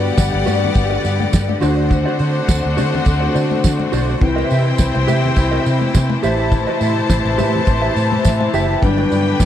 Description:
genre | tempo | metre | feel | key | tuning
disco | 104 BPM | 4/4 | straight | A dorian | A4 = 440 Hz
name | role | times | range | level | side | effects
warm studio string section | second line | 0.0-9.5 s | B3 to A5 | -21 LUFS | left 5 dB | none
mellow electric guitar | accompaniment | 0.0-9.3 s | F#4 to E5 | -25 LUFS | right 6 dB | spring reverb
tine electric piano | accompaniment | 0.0-9.5 s | C3 to G5 | -23 LUFS | left 2 dB | lush chorus
clear studio string section | sustained chords | 0.0-9.5 s | C3 to F#5 | -24 LUFS | right 1 dB | none
vintage muted fingered electric bass | bass | 0.0-9.5 s | F#1 to D3 | -19 LUFS | equal | none
damped 70s drum kit | drums | 0.2-9.5 s | hi-hat, kick drum, snare drum | -15 LUFS | equal | none
congas | percussion | 0.2-9.5 s | none | -27 LUFS | left 6 dB | none
tambourine | percussion | 0.2-9.5 s | none | -32 LUFS | right 19 dB | none
room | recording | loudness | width
little or no reverb | dry, close 1970s-style studio recording | -14 LUFS | side -10 dB against mid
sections
0.0-9.5 A section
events
tine electric piano fill 7.1-8.8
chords
0.0 Gmaj7; 1.6 D7; 4.2 Cmaj7; 6.2 Am7; 8.8 Gmaj7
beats
0.18 0.76 1.33 | 1.91 2.48 3.06 3.64 | 4.21 4.79 5.37 5.94 | 6.52 7.09 7.67 8.25 | 8.82 9.40

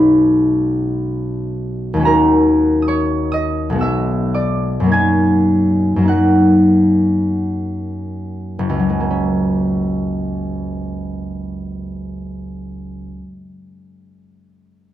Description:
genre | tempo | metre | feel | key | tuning
classical, solo harp piece | 45-75 BPM | 3/4 | rubato | F# mixolydian | A4 = 444 Hz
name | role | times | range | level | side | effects
concert harp | solo | 0.0-13.6 s | F#1 to G#6 | -15 LUFS | equal | none
room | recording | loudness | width
wet large studio reverb, RT60 1.3 s | dark, warm production | -14 LUFS | side -12 dB against mid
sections
0.0-8.6 A section; 8.6-12.4 B section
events
slowing down 0.8-8.6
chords
0.0 B69; 2.1 D#m7; 3.8 Bm6; 4.9 F#6; 8.6 F#add9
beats
0.43 1.24 | 2.05 2.89 3.81 | 4.91 6.07 7.28 | 8.58 9.87 11.16

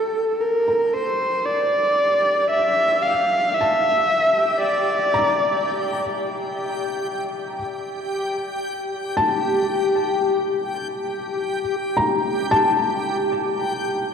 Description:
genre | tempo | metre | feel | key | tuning
ambient | free time | none | none | G dorian | A4 = 440 Hz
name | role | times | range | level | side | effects
dark electric violin | melody | 0.0-6.1 s | A4 to F5 | -19 LUFS | equal | analog delay
felt-muted upright piano | arpeggios | 0.0-14.1 s | G5 to D6 | -25 LUFS | left 2 dB | analog delay
backwards swelling texture | texture | 0.0-14.1 s | G4 to G5 | -25 LUFS | left 1 dB | built-in reverb
room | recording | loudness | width
wet lush hall reverb, RT60 2.9 s | dreamy mix soaked in reverb, cassette tape | -19 LUFS | side -7 dB against mid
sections
0.0-14.1 A section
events
fade-in on felt piano 0.0-14.1; fade-in on synth texture 0.0-14.1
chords
0.0 Gmadd9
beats
free time

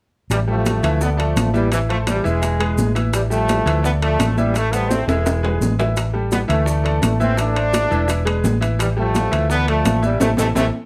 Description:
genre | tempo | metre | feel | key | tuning
latin, salsa | 170 BPM | 4/4 | straight | A minor | A4 = 441 Hz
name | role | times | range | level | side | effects
brilliant trombone section | melody | 0.3-10.7 s | C3 to D4 | -24 LUFS | equal | none
hollow-body short-scale fingered electric bass | bass | 0.3-10.7 s | E1 to D2 | -22 LUFS | equal | none
bongos | percussion | 0.3-10.6 s | none | -31 LUFS | equal | none
congas | percussion | 0.3-10.6 s | none | -28 LUFS | equal | none
maracas | percussion | 0.3-10.7 s | none | -37 LUFS | equal | none
timbales | percussion | 0.3-10.7 s | none | -29 LUFS | equal | none
bright grand piano | accompaniment | 0.5-10.7 s | E3 to E5 | -27 LUFS | equal | none
room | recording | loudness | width
moderate studio reverb, RT60 0.6 s | none | -19 LUFS | mono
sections
0.3-10.9 A section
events
drum fill 4.9-6.0, 10.6; band accent 10.2-10.9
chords
0.3 A5; 1.0 Dsus2; 1.7 Am; 2.4 E; 3.1 A5; 3.8 Dsus2; 4.6 Am; 5.3 E; 6.0 A5; 6.7 Dsus2; 7.4 Am; 8.1 E7; 8.8 A5; 9.5 Dsus2; 10.2 Am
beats
| 0.31 0.67 1.02 1.37 | 1.73 2.08 2.43 2.79 | 3.14 3.49 3.85 4.20 | 4.55 4.91 5.26 5.62 | 5.97 6.32 6.68 7.03 | 7.38 7.74 8.09 8.45 | 8.80 9.15 9.51 9.86 | 10.22 10.57

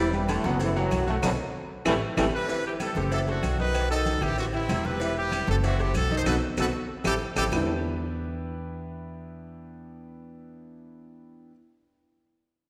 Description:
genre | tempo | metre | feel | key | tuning
latin, salsa | 191 BPM | 4/4 | straight | E minor | A4 = 440 Hz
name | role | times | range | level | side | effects
clear trombone section | melody | 0.0-2.3 s | F#2 to E4 | -32 LUFS | equal | none
warm baritone saxophone | second line | 0.0-2.2 s | D3 to G3 | -35 LUFS | equal | none
bright baby grand piano | accompaniment | 0.0-11.5 s | C3 to F#5 | -35 LUFS | equal | none
upright bass | bass | 0.0-11.5 s | E1 to E2 | -33 LUFS | equal | none
congas | percussion | 0.1-7.6 s | none | -38 LUFS | equal | none
maracas | percussion | 0.1-7.6 s | none | -47 LUFS | equal | none
agogo bells and timbales | percussion | 0.3-7.6 s | none | -40 LUFS | equal | none
claves | percussion | 0.3-7.6 s | none | -43 LUFS | equal | none
cowbell and bongos | percussion | 0.3-7.6 s | none | -40 LUFS | equal | none
brilliant horn section | melody | 2.3-7.5 s | C4 to C5 | -32 LUFS | equal | none
room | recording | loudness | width
wet concert hall reverb, RT60 2.2 s | recorded in a church or concert hall | -27 LUFS | mono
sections
0.0-2.5 A section; 2.5-7.5 B section; 7.5-10.0 C section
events
band accent 1.2-2.5, 6.3-7.5; drum fill 2.0-2.5, 6.3-7.5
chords
0.0 Em7; 0.6 F#m7b5; 1.2 B7(no3); 1.9 A5; 2.5 Em; 3.1 F#m7b5; 3.7 B7; 4.4 Am7; 5.0 Em; 5.6 F#m7b5; 6.3 B7; 6.9 A5; 7.5 Em7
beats
0.29 0.60 0.92 | 1.23 1.54 1.86 2.17 | 2.49 2.80 3.12 3.43 | 3.74 4.06 4.37 4.69 | 5.00 5.32 5.63 5.95 | 6.26 6.58 6.89 7.21 | 7.52 7.84 8.15 8.47 | 8.78 9.10 9.41 9.72

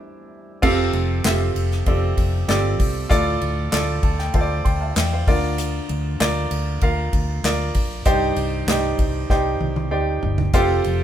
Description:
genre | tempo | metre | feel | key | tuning
piano-driven pop | 97 BPM | 4/4 | straight | F major | A4 = 440 Hz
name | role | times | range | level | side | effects
warm grand piano | accompaniment | 0.0-11.0 s | G2 to C6 | -22 LUFS | right 2 dB | none
vintage muted fingered electric bass | bass | 0.6-11.0 s | F1 to E2 | -23 LUFS | equal | none
unplugged drum kit | drums | 0.6-11.0 s | crash cymbal, handclaps, hi-hat, kick drum, ride cymbal, snare drum, toms | -23 LUFS | equal | none
room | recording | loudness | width
moderate studio reverb, RT60 0.9 s | band playing live in one room | -18 LUFS | side -10 dB against mid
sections
0.6-11.0 A section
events
stop 0.0-0.6; grand piano fill 3.7-5.6; drum fill 9.3-10.5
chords
0.0 C; 0.6 Fadd9; 3.1 Dm; 5.3 Bb/D; 8.1 Cmadd9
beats
0.01 | 0.63 1.25 1.87 2.49 | 3.11 3.73 4.35 4.97 | 5.59 6.21 6.83 7.44 | 8.06 8.68 9.30 9.92 | 10.54

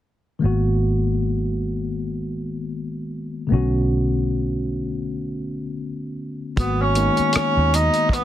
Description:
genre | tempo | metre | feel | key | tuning
R&B, neo-soul | 78 BPM | 4/4 | swing 57% on 16ths | unclear | A4 = 441 Hz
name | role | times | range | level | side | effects
tine electric piano | accompaniment | 0.4-8.2 s | C#3 to F#4 | -24 LUFS | left 2 dB | auto-pan
vintage muted fingered electric bass | bass | 0.4-7.9 s | G#1 to D#2 | -23 LUFS | equal | none
clear tenor saxophone | melody | 6.6-8.2 s | B3 to D#4 | -20 LUFS | right 1 dB | none
cloth-damped thuddy drum kit | drums | 6.6-8.2 s | hi-hat, kick drum, rim click | -23 LUFS | equal | none
room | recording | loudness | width
light reverb | dense, heavily limited modern master | -20 LUFS | side -12 dB against mid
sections
0.4-6.6 A section; 6.6-8.2 B section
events
none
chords
0.4 G#m9; 3.5 Bm9; 6.6 G#m9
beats
| 0.42 1.19 1.96 2.73 | 3.50 4.27 5.04 5.80 | 6.57 7.34 8.11

